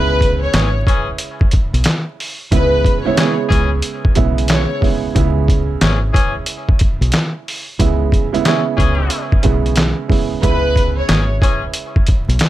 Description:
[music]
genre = hip hop, boom-bap hip-hop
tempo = 91 BPM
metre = 4/4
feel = swing 62% on 16ths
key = C# minor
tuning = A4 = 440 Hz
[part]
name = warm studio violin section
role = melody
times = 0.0-4.8, 10.4-11.3 s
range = B4 to C#5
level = -20 LUFS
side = left 1 dB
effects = high-pass filter, low-pass filter, plate reverb, analog delay
[part]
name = dark grand piano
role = accompaniment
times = 0.0-12.5 s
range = C#3 to E4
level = -21 LUFS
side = right 8 dB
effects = high-pass filter, low-pass filter, plate reverb
[part]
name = deep dub fingered electric bass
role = bass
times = 0.0-12.4 s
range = G#1 to C#2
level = -17 LUFS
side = equal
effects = none
[part]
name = trip hop sampler-style drum kit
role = drums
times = 0.2-12.5 s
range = handclaps, hi-hat, kick drum, snare drum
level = -16 LUFS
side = equal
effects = none
[part]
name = clear horn section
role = stabs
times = 0.5-11.6 s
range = E3 to G#4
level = -24 LUFS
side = left 5 dB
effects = high-pass filter, low-pass filter, plate reverb, analog delay
[sound]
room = light reverb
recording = vinyl crackle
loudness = -13 LUFS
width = side -14 dB against mid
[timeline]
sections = 0.0-12.5 A section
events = none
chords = 0.0 C#m7

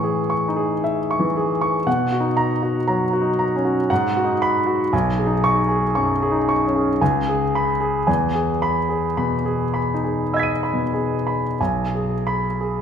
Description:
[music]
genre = classical, impressionist solo piano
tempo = 45-59 BPM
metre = 3/4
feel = rubato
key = B mixolydian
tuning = A4 = 440 Hz
[part]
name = clear grand piano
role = solo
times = 0.0-12.8 s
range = B1 to D#7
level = -18 LUFS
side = equal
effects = none
[sound]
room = wet concert hall reverb, RT60 1.9 s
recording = minimal, uncompressed stereo recording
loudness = -18 LUFS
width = side -8 dB against mid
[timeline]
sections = 0.0-12.8 A section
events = none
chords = 0.0 Amaj7; 1.9 Bmaj7; 3.9 G#m7; 4.9 B69; 7.0 C#5; 8.1 Emaj7; 11.6 B5

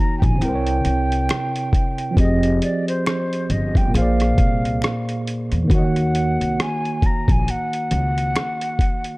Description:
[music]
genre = lo-fi hip hop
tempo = 68 BPM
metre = 4/4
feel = swing 57% on 16ths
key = Eb dorian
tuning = A4 = 440 Hz
[part]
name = breathy mellow jazz flute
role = melody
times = 0.0-9.2 s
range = C5 to Bb5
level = -25 LUFS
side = equal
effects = low-pass filter
[part]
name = tine electric piano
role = accompaniment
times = 0.0-9.2 s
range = Bb2 to Gb5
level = -23 LUFS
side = right 1 dB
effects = medium stereo tremolo, cassette tape, low-pass filter
[part]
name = upright bass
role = bass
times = 0.2-8.3 s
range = F1 to Fb2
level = -21 LUFS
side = equal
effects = none
[part]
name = lo-fi sampler-style drum kit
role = drums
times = 0.2-9.2 s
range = hi-hat, kick drum, rim click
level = -20 LUFS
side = equal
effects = none
[part]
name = finger snap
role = percussion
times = 1.3-8.6 s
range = none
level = -35 LUFS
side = left 3 dB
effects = none
[sound]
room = studio reverb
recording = dark, warm production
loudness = -17 LUFS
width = side -22 dB against mid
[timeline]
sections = 0.0-9.2 A section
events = none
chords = 0.4 C7b9; 2.2 Fm9; 3.9 Bb7; 5.7 Ebm7

